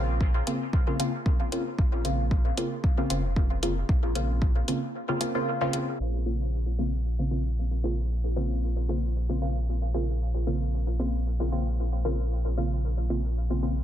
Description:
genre	dub techno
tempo	114 BPM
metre	4/4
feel	swing 54% on 16ths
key	Bb minor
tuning	A4 = 438 Hz
part	filtered dub chord stab	stabs	0.0-13.7 s	Db3 to F4	-30 LUFS	equal	chorus, phaser, sidechain pumping, dub echo
part	warm sub bass	bass	0.0-13.8 s	F1 to Bb1	-27 LUFS	equal	sidechain pumping
part	electronic kick drum	drums	0.2-4.5 s	none	-24 LUFS	equal	none
part	electronic hi-hat	drums	0.5-5.8 s	none	-35 LUFS	left 2 dB	none
room	digital ambience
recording	dense, heavily limited modern master, low-pass filter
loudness	-25 LUFS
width	side -11 dB against mid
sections	0.0-6.0 A section; 6.0-13.8 B section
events	break 4.9-6.0; filter sweep 6.0-13.8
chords	0.0 Bbmadd9

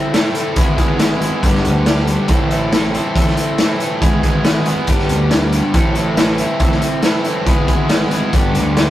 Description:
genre	indie rock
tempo	139 BPM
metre	4/4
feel	straight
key	A minor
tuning	A4 = 441 Hz
part	distorted electric guitar	riff	0.0-8.9 s	G2 to A4	-18 LUFS	equal	distortion
part	raw garage drum kit	drums	0.1-8.9 s	hi-hat, kick drum, snare drum	-16 LUFS	equal	none
part	fuzz picked electric bass	bass	0.6-8.9 s	G1 to D2	-20 LUFS	equal	overdrive
room	light reverb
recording	rough rehearsal-room recording, tube saturation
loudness	-13 LUFS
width	side -13 dB against mid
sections	0.0-8.9 A section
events	none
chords	0.0 Am; 0.6 E/G#; 1.4 G; 2.3 Am; 4.0 E/G#; 4.9 G; 5.7 Am; 7.5 E/G#; 8.3 G

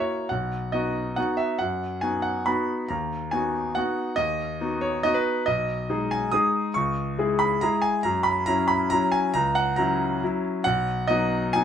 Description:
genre	classical, piano waltz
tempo	139 BPM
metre	3/4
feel	uneven beats, rubato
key	B major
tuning	A4 = 440 Hz
part	bright grand piano	solo	0.0-11.6 s	B1 to D#6	-22 LUFS	equal	none
room	light reverb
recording	minimal, uncompressed stereo recording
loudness	-22 LUFS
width	side -8 dB against mid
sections	0.0-11.6 A section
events	none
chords	0.3 B; 2.9 B/D#; 5.5 G#m/B; 6.8 C#m; 8.0 F#7; 10.7 B

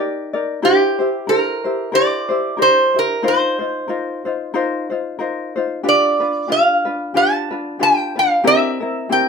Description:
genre	Hawaiian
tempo	92 BPM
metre	4/4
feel	swing 56% on 8ths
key	unclear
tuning	A4 = 440 Hz
part	ukulele	accompaniment	0.0-9.3 s	C4 to D5	-20 LUFS	left 2 dB	none
part	lap resonator guitar	melody	0.6-9.3 s	G4 to A5	-16 LUFS	right 1 dB	none
room	wet small room reverb, RT60 0.5 s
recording	minimal, uncompressed stereo recording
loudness	-15 LUFS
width	side -5 dB against mid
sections	0.0-9.3 A section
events	none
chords	0.0 Ebmaj7; 0.6 C7; 3.2 F7sus4; 5.8 G7; 8.4 C7

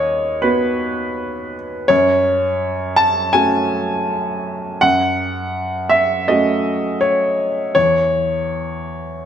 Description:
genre	neoclassical minimalist piano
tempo	82 BPM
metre	4/4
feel	rubato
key	F# dorian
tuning	A4 = 440 Hz
part	warm upright piano	solo	0.0-9.3 s	D#2 to A5	-16 LUFS	equal	none
room	moderate scoring stage reverb, RT60 1.7 s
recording	none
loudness	-15 LUFS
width	side -9 dB against mid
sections	0.0-9.3 A section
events	none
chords	0.0 B/D#; 1.9 F#m; 7.8 N.C.

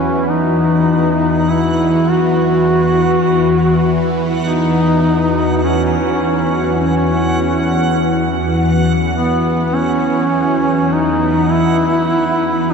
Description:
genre	dark ambient drone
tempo	51 BPM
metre	4/4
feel	straight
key	unclear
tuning	A4 = 440 Hz
part	warm duduk	melody	0.0-12.7 s	B3 to F#4	-16 LUFS	equal	shimmer reverb, ping-pong delay
part	deep dark ambient pad	sustained chords	0.0-12.7 s	E3 to B4	-18 LUFS	left 1 dB	chorus, built-in reverb, shimmer reverb
part	bowed-like drone	drone	0.0-12.7 s	E2 to E3	-17 LUFS	left 1 dB	built-in reverb, phaser
part	backwards swelling texture	texture	0.7-12.7 s	F#5	-26 LUFS	right 2 dB	built-in reverb, shimmer reverb
room	wet cathedral reverb, RT60 5.3 s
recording	dark, warm production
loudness	-12 LUFS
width	side -6 dB against mid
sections	0.0-12.7 A section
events	none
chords	0.0 Esus2

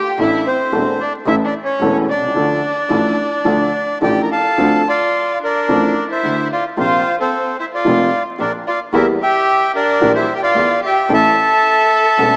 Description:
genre	tango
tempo	110 BPM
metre	4/4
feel	rubato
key	D minor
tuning	A4 = 438 Hz
part	bandoneon	melody	0.0-12.4 s	A4 to Bb5	-15 LUFS	equal	none
part	warm violin	second line	0.0-12.4 s	C4 to Bb4	-21 LUFS	equal	none
part	dark upright piano	accompaniment	0.2-12.4 s	E1 to A4	-18 LUFS	equal	none
part	clear double bass	bass	0.2-12.4 s	E1 to E2	-22 LUFS	equal	none
room	moderate lush hall reverb, RT60 2.9 s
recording	rough home demo mix, vinyl crackle, small speaker sound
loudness	-13 LUFS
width	side -35 dB against mid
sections	0.0-4.6 A section; 4.6-12.4 A section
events	none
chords	0.2 Asus4; 1.3 A; 2.4 Dm; 4.6 Dm7; 6.8 Bbsus2; 8.9 Edim; 11.1 A

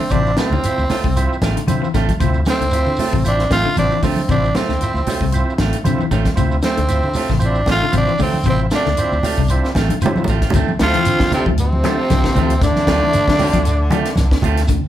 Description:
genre	afrobeat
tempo	115 BPM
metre	4/4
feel	swing 55% on 16ths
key	D minor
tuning	A4 = 440 Hz
part	raspy tenor saxophone	melody	0.0-14.4 s	C4 to F4	-20 LUFS	right 1 dB	none
part	semi-hollow electric guitar	arpeggios	0.0-14.9 s	A2 to F3	-23 LUFS	left 7 dB	none
part	electric guitar at the edge of break-up	stabs	0.0-14.6 s	A3 to F4	-24 LUFS	right 6 dB	none
part	fingered electric bass	bass	0.0-14.9 s	A1 to D3	-20 LUFS	equal	none
part	overdriven tonewheel organ	accompaniment	0.1-10.2 s	F3 to E4	-25 LUFS	right 3 dB	chorus vibrato
part	tight funk drum kit	drums	0.1-14.8 s	hi-hat, kick drum, snare drum	-22 LUFS	equal	none
part	congas	percussion	0.1-14.6 s	none	-23 LUFS	right 2 dB	none
part	shekere	percussion	0.1-14.8 s	none	-26 LUFS	right 1 dB	none
part	raspy baritone saxophone	second line	10.8-14.4 s	C3 to F3	-24 LUFS	left 2 dB	none
part	clear trombone	second line	10.9-14.4 s	F3 to C4	-28 LUFS	right 2 dB	none
room	moderate large studio reverb, RT60 0.8 s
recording	band playing live in one room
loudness	-14 LUFS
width	side -12 dB against mid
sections	0.0-10.5 A section; 10.5-14.9 B section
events	drum fill 9.9-10.5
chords	0.0 Dm7

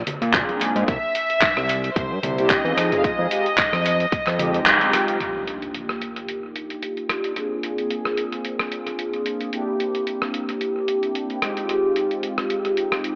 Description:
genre	nu-disco, nu disco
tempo	111 BPM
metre	4/4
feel	swing 55% on 16ths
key	Eb major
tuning	A4 = 439 Hz
part	fat analog bass	bass	0.0-4.6 s	F1 to Bb2	-23 LUFS	equal	none
part	dusty soul sampler-style drum kit	drums	0.1-13.2 s	handclaps, hi-hat, rim click	-23 LUFS	equal	low-pass filter on snare, low-pass filter on hats, analog delay
part	congas	percussion	0.1-4.9 s	none	-36 LUFS	equal	analog delay
part	mellow synth brass	accompaniment	0.3-13.2 s	Ab3 to Ab4	-24 LUFS	equal	chorus, phaser, analog delay
part	electronic kick drum	drums	0.3-4.2 s	none	-25 LUFS	equal	none
part	warm studio violin section	melody	0.9-4.9 s	C5 to F5	-23 LUFS	equal	tape echo
part	impact	sound effects	5.2-7.4 s	none	-41 LUFS	equal	none
room	wet spring reverb, RT60 1.9 s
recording	echo-heavy mix, AM radio sound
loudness	-20 LUFS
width	side -36 dB against mid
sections	0.0-5.2 A section; 5.2-13.2 B section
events	band accent 4.7; impact 5.2-7.4; filter sweep on analog polysynth 5.2-13.2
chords	0.0 Bb7; 0.9 C7; 2.8 Fm9; 5.2 Ebmaj7; 7.4 Bb7; 9.5 C7; 11.4 Fm9

